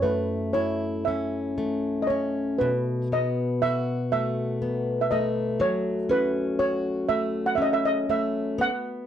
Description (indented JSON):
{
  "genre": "celtic folk, Celtic slow air",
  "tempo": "40 BPM (dotted quarters)",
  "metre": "6/8",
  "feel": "rubato",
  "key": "unclear",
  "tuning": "A4 = 440 Hz",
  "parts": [
    { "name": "steel pan", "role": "melody", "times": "0.0-9.1 s", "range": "B4 to F#5", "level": "-26 LUFS", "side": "right 2 dB", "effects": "none" },
    { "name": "fingerpicked plugged-in steel-string acoustic guitar", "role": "accompaniment", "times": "0.0-9.1 s", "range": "F#2 to F#4", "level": "-26 LUFS", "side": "left 2 dB", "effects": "none" }
  ],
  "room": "light reverb",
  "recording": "dry, close 1970s-style studio recording",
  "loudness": "-23 LUFS",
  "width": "side -9 dB against mid",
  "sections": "0.0-9.1 A section",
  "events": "none",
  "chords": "0.0 F#m7; 2.6 B5; 5.6 F#m"
}